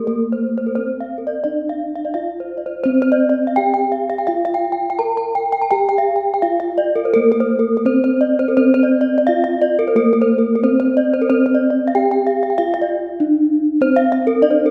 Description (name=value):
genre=gamelan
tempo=84-99 BPM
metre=4/4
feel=straight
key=C slendro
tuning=A4 = 442 Hz
part: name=gamelan-type bronze metallophone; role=melody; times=0.0-14.7 s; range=Bb3-45c to Bb4-45c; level=-20 LUFS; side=equal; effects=none
part: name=gamelan-type bronze metallophone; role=arpeggios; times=0.1-14.7 s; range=Bb4-45c to Bb5-45c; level=-20 LUFS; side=equal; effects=none
room=wet scoring stage reverb, RT60 1.6 s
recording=faint mains hum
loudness=-17 LUFS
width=mono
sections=0.0-2.9 A section; 2.9-13.8 B section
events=none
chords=none